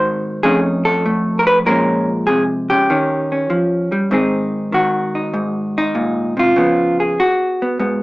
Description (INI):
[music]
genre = solo jazz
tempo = 98 BPM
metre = 4/4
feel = swing 69% on 8ths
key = Ab mixolydian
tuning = A4 = 440 Hz
[part]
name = vintage hollow-body jazz guitar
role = solo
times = 0.0-8.0 s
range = F2 to C5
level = -14 LUFS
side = equal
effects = none
[sound]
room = moderate club reverb, RT60 0.5 s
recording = small speaker sound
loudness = -14 LUFS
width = side -20 dB against mid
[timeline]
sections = 0.0-4.1 A section; 4.1-8.0 B section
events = hollow-body jazz guitar solo 4.1-8.0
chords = 0.4 Faug7; 1.7 Bbm7; 2.9 Eb7; 4.1 Ab7; 6.6 Db7